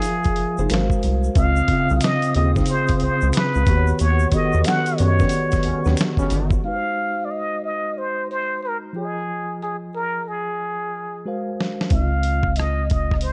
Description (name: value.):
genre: R&B, neo-soul.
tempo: 91 BPM.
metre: 4/4.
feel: swing 62% on 16ths.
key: Db major.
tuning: A4 = 440 Hz.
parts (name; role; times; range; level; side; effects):
trumpet with plunger mute; melody; 0.0-13.3 s; Ab4 to F#5; -26 LUFS; equal; none.
hollow-body jazz guitar; second line; 0.0-6.0 s; Db4 to C5; -32 LUFS; equal; none.
mellow tine electric piano; accompaniment; 0.0-13.3 s; Db3 to F5; -27 LUFS; equal; none.
dusty soul sampler-style drum kit; drums; 0.0-6.6, 11.6-13.3 s; hi-hat, kick drum, rim click, snare drum; -25 LUFS; equal; none.
tube shaker and finger snaps; percussion; 0.0-6.6 s; none; -41 LUFS; equal; none.
rubbery square bass; bass; 0.4-6.6, 11.9-13.3 s; Gb1 to F#2; -22 LUFS; equal; none.
large flute ensemble; sustained chords; 1.4-6.6 s; C4 to Eb6; -37 LUFS; equal; none.
brilliant trombone section; stabs; 5.6-6.6 s; Db3 to Db4; -32 LUFS; equal; none.
room: small room ambience.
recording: dark, warm production, nothing above 10.4 kHz.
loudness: -21 LUFS.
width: mono.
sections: 0.0-6.6 A section; 6.6-13.3 B section.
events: band accent 4.0-6.6; drum fill 11.2-11.9.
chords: 0.0 Fm7; 0.7 Ab13; 1.4 Dbmaj9; 3.7 Eb7alt; 6.6 Ab7; 8.9 Fm7; 11.2 Ab13; 11.9 Dbmaj9.